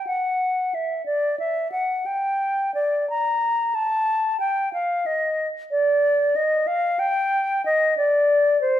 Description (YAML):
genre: classical, baroque-style fantasia for unaccompanied flute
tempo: 61 BPM (dotted quarters)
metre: 12/8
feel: rubato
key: G minor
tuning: A4 = 439 Hz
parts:
  - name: concert flute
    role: solo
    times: 0.0-8.8 s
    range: C5 to Bb5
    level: -20 LUFS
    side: left 1 dB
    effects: none
room: wet recital hall reverb, RT60 1.4 s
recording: none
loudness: -20 LUFS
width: side -11 dB against mid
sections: 0.0-8.8 A section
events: none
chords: none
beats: | 0.07 1.06 2.06 3.10 | 4.08 5.06 6.03 7.00 | 7.97